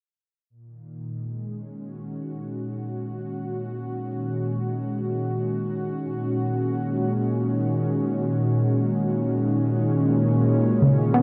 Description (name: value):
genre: ambient, sequencer-driven space music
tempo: free time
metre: none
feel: none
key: unclear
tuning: A4 = 440 Hz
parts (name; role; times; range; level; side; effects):
- lush unison pad; sustained chords; 0.5-11.2 s; A#2 to F#4; -26 LUFS; equal; chorus
- analog pluck; riff; 10.8-11.2 s; C#3 to B3; -20 LUFS; equal; chorus
room: wet huge ambient reverb, RT60 7.8 s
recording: dark, warm production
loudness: -25 LUFS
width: mono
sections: 0.5-11.2 A section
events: fade-in on analog synth pad 0.5-11.2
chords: 0.5 G#5